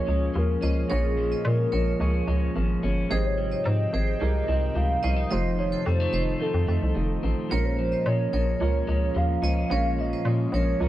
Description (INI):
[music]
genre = indie pop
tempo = 109 BPM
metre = 4/4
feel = straight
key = Bb dorian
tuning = A4 = 440 Hz
[part]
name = hollow clarinet-like synth lead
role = melody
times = 0.0-10.9 s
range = Ab4 to F5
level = -30 LUFS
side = right 1 dB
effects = analog chorus
[part]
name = vibraphone with hard mallets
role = second line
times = 0.0-10.9 s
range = Ab4 to Eb5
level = -36 LUFS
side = right 1 dB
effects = analog chorus, tape echo
[part]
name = electric guitar at the edge of break-up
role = accompaniment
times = 0.0-10.9 s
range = F2 to Eb4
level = -31 LUFS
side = left 3 dB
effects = lush chorus, vibrato effect
[part]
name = soft electric-piano-like synth keys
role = accompaniment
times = 0.0-10.9 s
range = Ab3 to Eb5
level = -34 LUFS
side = right 5 dB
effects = chorus
[part]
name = warm analog pad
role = sustained chords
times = 0.0-10.9 s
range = C3 to G5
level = -34 LUFS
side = equal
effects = chorus
[part]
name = hollow knocking FM bass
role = bass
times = 0.0-10.9 s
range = F1 to Bb2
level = -25 LUFS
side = equal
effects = none
[sound]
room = light reverb, digital ambience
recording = dark, warm production, nothing above 10.6 kHz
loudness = -22 LUFS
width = side -14 dB against mid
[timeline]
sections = 0.0-10.9 A section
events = none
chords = 0.0 Bbm7; 3.1 Abmaj7; 5.3 F7; 7.5 Bbm7